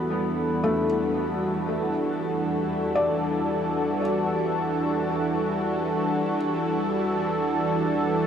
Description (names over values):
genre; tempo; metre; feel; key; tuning
ambient; free time; none; none; E minor; A4 = 440 Hz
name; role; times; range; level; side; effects
warm analog pad; sustained chords; 0.0-8.3 s; E3 to A4; -24 LUFS; equal; chorus, shimmer reverb
felt-muted upright piano; arpeggios; 0.0-8.3 s; A3 to D5; -30 LUFS; left 2 dB; diffuse ambient delay, shimmer reverb
warm studio cello section; bass; 0.0-8.3 s; E2; -42 LUFS; equal; none
bowed-like drone; drone; 0.0-8.3 s; E3 to E4; -38 LUFS; equal; built-in reverb
room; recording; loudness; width
wet huge ambient reverb, RT60 8.1 s; in a vast, echoing space; -23 LUFS; side -8 dB against mid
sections
0.0-8.3 A section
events
fade-in on cello section 0.0-8.3; fade-in on synth drone 0.0-8.3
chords
0.0 Em11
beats
free time